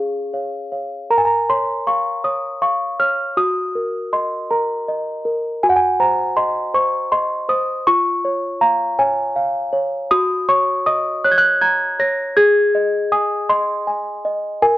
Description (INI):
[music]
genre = classical, lullaby for celesta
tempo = 53 BPM (dotted quarters)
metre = 6/8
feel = straight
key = unclear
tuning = A4 = 440 Hz
[part]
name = small celesta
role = solo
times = 0.0-14.8 s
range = Db4 to Bb6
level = -16 LUFS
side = equal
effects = none
[sound]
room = studio reverb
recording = dry, close 1970s-style studio recording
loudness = -16 LUFS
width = side -15 dB against mid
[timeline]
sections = 0.0-1.1 A section; 1.1-14.8 B section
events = none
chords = 0.0 Db; 1.1 Bbm; 3.4 Ebm/Gb; 5.6 Ab9/Gb; 7.9 Db/F; 10.1 Ebm7/Gb; 12.4 Ab